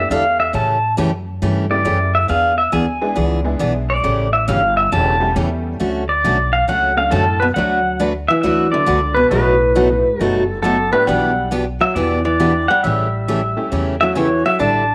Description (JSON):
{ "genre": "country", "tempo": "137 BPM", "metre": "4/4", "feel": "swing 67% on 8ths", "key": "D major", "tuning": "A4 = 438 Hz", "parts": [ { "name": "pedal steel guitar", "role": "melody", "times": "0.0-14.9 s", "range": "A4 to A5", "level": "-19 LUFS", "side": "equal", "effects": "slapback echo" }, { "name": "honky-tonk upright piano", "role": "accompaniment", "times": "0.0-14.6 s", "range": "C#3 to G#4", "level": "-29 LUFS", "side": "equal", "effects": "none" }, { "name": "upright bass", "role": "bass", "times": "0.0-14.9 s", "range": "E1 to A2", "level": "-24 LUFS", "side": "equal", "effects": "none" }, { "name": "picked steel-string acoustic guitar", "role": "accompaniment", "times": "0.1-14.8 s", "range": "B2 to B4", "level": "-23 LUFS", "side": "equal", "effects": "none" }, { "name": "archtop guitar, miked and amplified", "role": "second line", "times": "7.1-14.9 s", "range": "F#2 to D4", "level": "-24 LUFS", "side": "equal", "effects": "none" } ], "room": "light reverb, small room ambience", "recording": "none", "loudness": "-17 LUFS", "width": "mono", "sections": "0.0-7.6 A section; 7.6-14.9 B section", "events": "pedal steel guitar solo 0.0-7.6", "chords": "0.0 A9sus4; 0.5 A7; 2.3 E7; 4.0 A7; 5.8 Dmaj7; 7.6 D69; 9.3 B7; 11.1 Em7/B; 12.8 A7" }